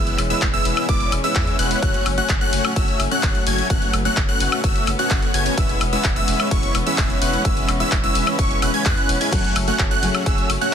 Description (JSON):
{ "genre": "EDM, festival progressive house", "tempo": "128 BPM", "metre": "4/4", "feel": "straight", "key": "F# minor", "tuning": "A4 = 441 Hz", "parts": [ { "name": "dark studio string section", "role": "sustained chords", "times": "0.0-10.7 s", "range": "E3 to C#4", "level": "-27 LUFS", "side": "left 2 dB", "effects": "sidechain pumping" }, { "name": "plucky unison lead", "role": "arpeggios", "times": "0.0-10.7 s", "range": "C#6 to G#6", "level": "-24 LUFS", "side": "equal", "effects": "phaser, sidechain pumping, digital delay" }, { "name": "dense compressed supersaw", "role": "riff", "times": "0.0-10.7 s", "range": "G#3 to G#5", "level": "-24 LUFS", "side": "equal", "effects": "sidechain pumping, digital delay" }, { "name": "saturated sub bass", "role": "bass", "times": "0.0-10.6 s", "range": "E1 to E2", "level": "-27 LUFS", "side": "equal", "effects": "tube saturation, sidechain pumping" }, { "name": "big-room dance drum kit", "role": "drums", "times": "0.1-10.7 s", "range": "crash cymbal, handclaps, hi-hat, woodblock", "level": "-25 LUFS", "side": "left 2 dB", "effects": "studio reverb" }, { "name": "electronic kick drum", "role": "drums", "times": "0.4-10.4 s", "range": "none", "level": "-21 LUFS", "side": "equal", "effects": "studio reverb" }, { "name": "picked steel-string acoustic guitar", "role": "accompaniment", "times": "9.3-10.5 s", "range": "F#3 to A4", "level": "-27 LUFS", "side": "left 3 dB", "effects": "sidechain pumping, digital delay" } ], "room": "little or no reverb", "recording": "dense, heavily limited modern master, faint mains hum", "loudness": "-17 LUFS", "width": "side -8 dB against mid", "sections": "0.0-10.7 A section", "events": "none", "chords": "0.0 E; 1.8 F#m; 5.6 C#m7/E; 9.3 F#m" }